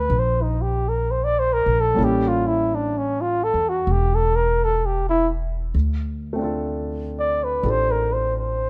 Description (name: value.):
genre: jazz ballad.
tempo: 64 BPM.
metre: 4/4.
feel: swing 66% on 8ths.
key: unclear.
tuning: A4 = 440 Hz.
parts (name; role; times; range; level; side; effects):
breathy flugelhorn; melody; 0.0-8.7 s; C#4 to D5; -23 LUFS; equal; none.
warm concert grand piano; accompaniment; 0.0-8.7 s; G3 to Bb4; -29 LUFS; equal; none.
upright bass; bass; 0.0-8.7 s; E1 to E2; -26 LUFS; equal; none.
room: light reverb.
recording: none.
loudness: -22 LUFS.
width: mono.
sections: 0.0-8.7 A section.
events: flugelhorn solo 0.0-8.7.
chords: 0.0 Eb69; 2.0 A7b9; 5.7 Dm7.